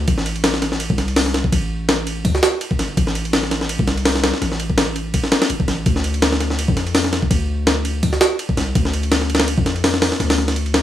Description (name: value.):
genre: drum and bass, jungle.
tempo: 166 BPM.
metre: 4/4.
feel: swing 54% on 16ths.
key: A minor.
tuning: A4 = 438 Hz.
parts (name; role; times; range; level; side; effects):
long sustained 808-style bass; bass; 0.0-10.8 s; G1 to F2; -22 LUFS; equal; none.
breakbeat sampler-style drum kit; drums; 0.1-10.8 s; hi-hat, kick drum, ride cymbal, snare drum; -17 LUFS; equal; none.
room: digital ambience.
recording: none.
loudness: -16 LUFS.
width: side -12 dB against mid.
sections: 0.0-10.8 A section.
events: none.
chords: none.